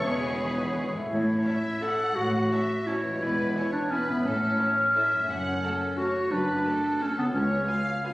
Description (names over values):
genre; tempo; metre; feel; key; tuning
classical; 173 BPM; 3/4; uneven beats, rubato; A major; A4 = 442 Hz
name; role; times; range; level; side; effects
rich chamber violin section; melody; 0.0-8.1 s; G#5 to C#6; -43 LUFS; left 1 dB; none
clear oboe; second line; 0.0-0.9 s; G#4; -36 LUFS; equal; none
dark chamber violin section; second line; 0.0-8.1 s; G#4 to F#5; -36 LUFS; equal; none
mellow hollow silver concert flute; second line; 0.0-0.9 s; C#5; -36 LUFS; equal; none
warm clarinet; second line; 0.0-8.1 s; B3 to A4; -26 LUFS; equal; none
warm chamber viola section; accompaniment; 0.0-8.1 s; A3 to C#5; -40 LUFS; equal; none
mellow French horn section; sustained chords; 0.0-0.9 s; none; barely audible; none; none
warm trombone section; sustained chords; 0.0-0.9 s; E3 to B3; -44 LUFS; right 2 dB; none
concert harp; arpeggios; 0.0-8.1 s; E2 to D5; -36 LUFS; left 1 dB; none
clear trumpet section; stabs; 0.0-0.9 s; G#4; -42 LUFS; equal; none
dark tuba; bass; 0.0-0.9 s; E1; -39 LUFS; right 1 dB; none
rich chamber double bass section; bass; 0.0-7.6 s; E1 to C#2; -36 LUFS; right 1 dB; none
warm chamber cello section; bass; 0.0-7.6 s; C#2 to A2; -32 LUFS; equal; none
room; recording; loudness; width
wet recital hall reverb, RT60 1.8 s; recorded on a phone in the room, studio reverb, compression; -24 LUFS; side -18 dB against mid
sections
0.0-1.1 A section; 1.1-8.1 B section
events
none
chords
0.0 E; 1.1 A; 3.2 E7; 4.3 A; 5.3 F#m; 7.3 C#7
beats
| 0.04 0.39 0.76 | 1.11 1.46 1.82 | 2.17 2.51 2.87 | 3.21 3.55 3.91 | 4.25 4.59 4.95 | 5.29 5.63 5.98 | 6.32 6.65 7.01 | 7.34 7.68 8.03